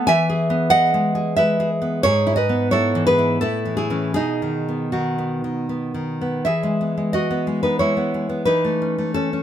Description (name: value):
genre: romantic piece for solo classical guitar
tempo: 76-95 BPM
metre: 3/4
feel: rubato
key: E major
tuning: A4 = 440 Hz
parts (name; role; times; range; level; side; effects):
- nylon-string guitar; solo; 0.0-9.4 s; G#2 to G#5; -18 LUFS; equal; none
room: light reverb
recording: none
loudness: -18 LUFS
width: side -10 dB against mid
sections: 0.0-6.4 A section; 6.4-9.4 B section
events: none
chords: 0.1 E; 2.0 E/G#; 3.4 A; 4.2 B; 6.4 E; 8.5 A/E